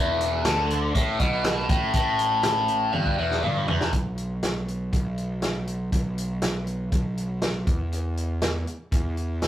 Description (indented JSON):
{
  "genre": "psychedelic rock",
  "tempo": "120 BPM",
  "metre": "4/4",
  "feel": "straight",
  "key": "unclear",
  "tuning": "A4 = 440 Hz",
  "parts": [
    { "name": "biting overdriven guitar", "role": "riff", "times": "0.0-3.9 s", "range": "E2 to D3", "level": "-23 LUFS", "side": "left 1 dB", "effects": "phaser" },
    { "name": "fuzz picked electric bass", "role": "bass", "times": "0.0-9.5 s", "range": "E1 to E2", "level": "-28 LUFS", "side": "equal", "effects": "overdrive" },
    { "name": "vintage drum kit", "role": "drums", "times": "0.2-9.5 s", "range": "hi-hat, kick drum, snare drum, toms", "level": "-26 LUFS", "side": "equal", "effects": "none" }
  ],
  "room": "moderate studio reverb, RT60 0.6 s",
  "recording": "rough rehearsal-room recording, tube saturation",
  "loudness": "-23 LUFS",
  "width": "side -12 dB against mid",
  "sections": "0.0-3.9 A section; 3.9-9.5 B section",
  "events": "drum fill 2.9-3.9",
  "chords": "0.0 E5; 3.9 N.C."
}